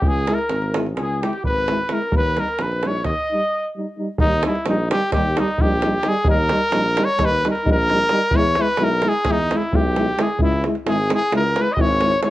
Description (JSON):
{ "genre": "balkan folk, Balkan brass band", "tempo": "261 BPM (eighths)", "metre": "9/8", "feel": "straight", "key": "Eb phrygian dominant", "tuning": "A4 = 440 Hz", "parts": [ { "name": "warm cornet", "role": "melody", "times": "0.0-12.3 s", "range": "Eb4 to Eb5", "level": "-21 LUFS", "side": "equal", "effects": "plate reverb" }, { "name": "clear flugelhorn", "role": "second line", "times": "0.0-3.7, 11.6-12.3 s", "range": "G4 to Eb5", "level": "-29 LUFS", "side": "left 2 dB", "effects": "none" }, { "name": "mellow tuba", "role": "bass", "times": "0.0-12.1 s", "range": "Ab1 to E2", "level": "-24 LUFS", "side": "equal", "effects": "none" }, { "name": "davul", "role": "percussion", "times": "0.0-12.3 s", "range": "none", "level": "-23 LUFS", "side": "right 1 dB", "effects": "none" }, { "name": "dark euphonium", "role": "accompaniment", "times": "0.3-12.3 s", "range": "G3 to G#3", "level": "-26 LUFS", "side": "right 3 dB", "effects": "none" }, { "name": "warm euphonium", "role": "accompaniment", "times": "0.3-12.3 s", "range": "Eb4 to E4", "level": "-27 LUFS", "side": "left 4 dB", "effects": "none" } ], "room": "moderate studio reverb, RT60 0.6 s", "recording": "worn, warbling old tape, cassette tape, warbly pitch drift", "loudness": "-17 LUFS", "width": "side -15 dB against mid", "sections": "0.0-4.2 A section; 4.2-12.3 B section", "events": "break 3.2-4.2", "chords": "0.0 Dbm; 2.1 Eb; 8.3 E; 10.4 Dbm" }